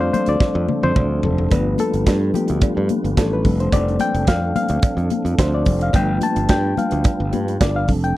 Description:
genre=disco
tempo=108 BPM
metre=4/4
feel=straight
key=unclear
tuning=A4 = 440 Hz
part: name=reed electric piano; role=accompaniment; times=0.0-8.2 s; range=F3 to A5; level=-22 LUFS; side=left 3 dB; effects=none
part: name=mellow tonewheel organ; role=sustained chords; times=0.0-8.2 s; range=F3 to B4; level=-25 LUFS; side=right 4 dB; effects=chorus vibrato, stopped rotary speaker
part: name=modern bright fingered electric bass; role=bass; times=0.0-8.1 s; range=F1 to G2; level=-21 LUFS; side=right 1 dB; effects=none
part: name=modern studio drum kit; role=drums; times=0.1-8.2 s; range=hi-hat, kick drum, snare drum, toms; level=-18 LUFS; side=right 1 dB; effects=none
part: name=congas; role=percussion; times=0.1-8.0 s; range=none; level=-26 LUFS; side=left 7 dB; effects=none
part: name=cowbell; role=percussion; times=0.4-7.7 s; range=none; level=-31 LUFS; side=right 8 dB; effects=none
room=little or no reverb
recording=dry, close 1970s-style studio recording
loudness=-16 LUFS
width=side -16 dB against mid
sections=0.0-8.2 A section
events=reed electric piano solo 0.0-8.2; drum fill 0.4-1.5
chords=0.0 F6; 1.5 G7; 3.5 F6; 5.9 G7

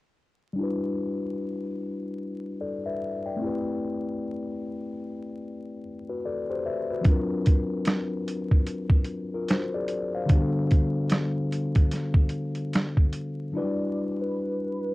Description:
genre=lo-fi hip hop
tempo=74 BPM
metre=4/4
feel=swing 60% on 16ths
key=E minor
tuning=A4 = 440 Hz
part: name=mellow tine electric piano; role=accompaniment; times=0.5-14.9 s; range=D3 to G5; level=-28 LUFS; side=left 2 dB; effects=fast stereo tremolo, cassette tape, low-pass filter
part: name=boom bap sampler-style drum kit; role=drums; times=7.0-13.4 s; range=finger snaps, hi-hat, kick drum, snare drum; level=-21 LUFS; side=equal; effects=none
part: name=warm velvety synth lead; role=melody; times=13.6-14.9 s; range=B4 to D5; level=-32 LUFS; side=right 1 dB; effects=chorus, low-pass filter
room=moderate booth ambience, RT60 0.2 s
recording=home recording on cassette, vinyl crackle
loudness=-25 LUFS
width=side -20 dB against mid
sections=0.6-13.5 A section; 13.5-14.9 B section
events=filter sweep on tine electric piano 0.6-13.5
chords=0.6 Em7; 3.4 Am9; 7.0 D7alt; 10.3 Gmaj7/D; 13.5 Em7

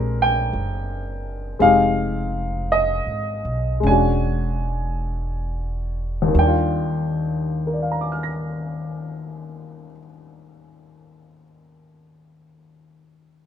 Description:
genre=jazz ballad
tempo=45-58 BPM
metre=4/4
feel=swing 66% on 8ths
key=Eb major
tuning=A4 = 443 Hz
part: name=warm baby grand piano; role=accompaniment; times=0.0-13.5 s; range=Eb2 to Bb6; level=-21 LUFS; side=left 1 dB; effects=none
part: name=upright bass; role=bass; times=0.0-9.9 s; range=E1 to Eb2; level=-25 LUFS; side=right 1 dB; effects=none
room=little or no reverb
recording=minimal, uncompressed stereo recording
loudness=-19 LUFS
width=side -9 dB against mid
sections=0.0-6.4 A section; 6.4-11.6 B section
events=slowing down 0.0-6.4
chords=0.0 Bb13; 1.6 Fm7; 3.8 E13; 6.4 Ebmaj9

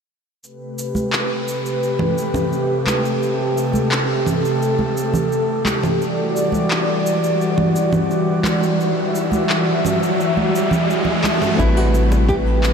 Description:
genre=sunset chillout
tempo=86 BPM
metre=4/4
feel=straight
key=A dorian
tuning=A4 = 443 Hz
part: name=airy breathy pad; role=sustained chords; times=0.4-12.7 s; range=C3 to E5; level=-19 LUFS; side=equal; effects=chorus, vintage 12-bit sampler grit
part: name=electronic cabasa, handclaps and congas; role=drums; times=0.4-12.7 s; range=none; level=-24 LUFS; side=right 2 dB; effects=overdrive
part: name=congas and bongos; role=percussion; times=0.9-12.3 s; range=none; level=-26 LUFS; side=right 2 dB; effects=none
part: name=riser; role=sound effects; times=8.1-11.6 s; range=none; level=-25 LUFS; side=equal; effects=none
part: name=nylon-string guitar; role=melody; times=11.6-12.7 s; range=E4 to A4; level=-23 LUFS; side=equal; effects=none
part: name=tine electric piano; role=accompaniment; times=11.6-12.7 s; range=G3 to B4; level=-22 LUFS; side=equal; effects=auto-pan, analog delay
part: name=round analog bass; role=bass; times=11.6-12.7 s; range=A1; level=-17 LUFS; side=equal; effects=none
part: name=electronic kick drum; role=drums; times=11.6-12.4 s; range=none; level=-23 LUFS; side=equal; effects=none
room=wet huge ambient reverb, RT60 7.9 s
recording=dreamy mix soaked in reverb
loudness=-16 LUFS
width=side -6 dB against mid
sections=0.4-11.6 A section; 11.6-12.7 B section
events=riser 8.1-11.6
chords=0.4 Am9; 6.0 Em9; 11.6 Am9

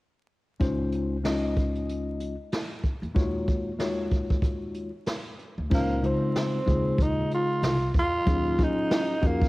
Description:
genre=hip hop, jazz-hop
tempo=94 BPM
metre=4/4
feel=swing 58% on 16ths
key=unclear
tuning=A4 = 440 Hz
part: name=mellow tine electric piano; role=accompaniment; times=0.6-9.5 s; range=Db3 to Eb5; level=-29 LUFS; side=left 2 dB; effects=medium stereo tremolo, cassette tape
part: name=upright bass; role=bass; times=0.6-9.5 s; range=C2 to F2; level=-32 LUFS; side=equal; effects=none
part: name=jazz brush drum kit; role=drums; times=0.6-9.5 s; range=crash cymbal, hi-hat, kick drum, snare drum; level=-27 LUFS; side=equal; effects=none
part: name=growling tenor saxophone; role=melody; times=5.7-9.5 s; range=Bb3 to F4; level=-27 LUFS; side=right 1 dB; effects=cassette tape
room=light reverb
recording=home recording on cassette, vinyl crackle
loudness=-24 LUFS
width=side -20 dB against mid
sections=0.6-5.7 A section; 5.7-9.5 B section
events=none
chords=0.6 Dbmaj9; 3.2 Ebm11; 5.7 Dbmaj9; 8.3 Ebm11

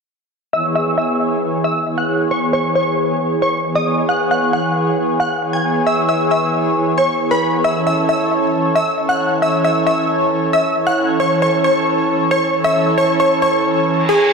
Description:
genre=trance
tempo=135 BPM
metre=4/4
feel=straight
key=C# minor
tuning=A4 = 435 Hz
part: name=wide unison pluck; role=melody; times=0.5-14.3 s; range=G#4 to G#5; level=-19 LUFS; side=left 1 dB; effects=cassette tape, tape echo
part: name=supersaw stab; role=second line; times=0.5-14.3 s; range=G#5 to G#6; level=-22 LUFS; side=equal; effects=low-pass filter, ping-pong delay
part: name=lush unison pad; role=sustained chords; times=0.5-14.0 s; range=E3 to C#5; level=-17 LUFS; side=equal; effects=chorus, vintage 12-bit sampler grit
part: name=reverse cymbal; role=sound effects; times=14.0-14.3 s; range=none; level=-21 LUFS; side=right 4 dB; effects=none
room=wet plate reverb, RT60 2.7 s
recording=dreamy mix soaked in reverb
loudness=-14 LUFS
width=side -4 dB against mid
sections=0.5-14.3 A section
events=filter sweep on synth pluck 0.5-14.3; filter sweep on analog synth pad 0.5-14.3; reverse cymbal 14.0-14.3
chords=0.5 C#m7; 7.6 A

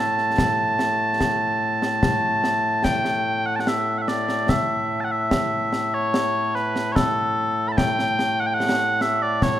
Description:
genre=scottish traditional, Scottish pipe music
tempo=73 BPM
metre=3/4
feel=straight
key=A mixolydian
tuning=A4 = 440 Hz
part: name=mellow small bagpipes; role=melody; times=0.0-9.6 s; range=A2 to B5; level=-20 LUFS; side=equal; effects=none
part: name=concert snare drum and concert bass drum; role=drums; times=0.2-9.6 s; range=none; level=-25 LUFS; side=left 1 dB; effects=none
room=light reverb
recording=minimal, uncompressed stereo recording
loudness=-19 LUFS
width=side -12 dB against mid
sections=0.0-2.8 A section; 2.8-9.6 B section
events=none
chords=none

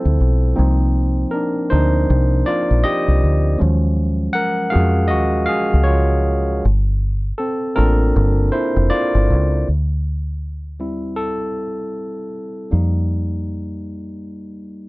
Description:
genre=R&B, neo-soul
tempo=79 BPM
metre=4/4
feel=swing 59% on 16ths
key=D minor from 9.7 s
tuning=A4 = 440 Hz
part: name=barky tine electric piano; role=accompaniment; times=0.0-14.9 s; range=F3 to Gb5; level=-20 LUFS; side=equal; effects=overdrive
part: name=deep dub fingered electric bass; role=bass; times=0.1-14.9 s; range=F1 to F2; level=-16 LUFS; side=equal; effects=none
room=little or no reverb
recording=dark, warm production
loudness=-15 LUFS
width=side -22 dB against mid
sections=0.0-9.7 A section; 9.7-14.9 B section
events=tine electric piano solo 0.0-9.7, 9.7-14.9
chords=0.0 Dm11; 0.6 Cm11; 3.6 Ebm11; 6.6 Gm11; 9.7 D9sus4; 12.7 F9sus4

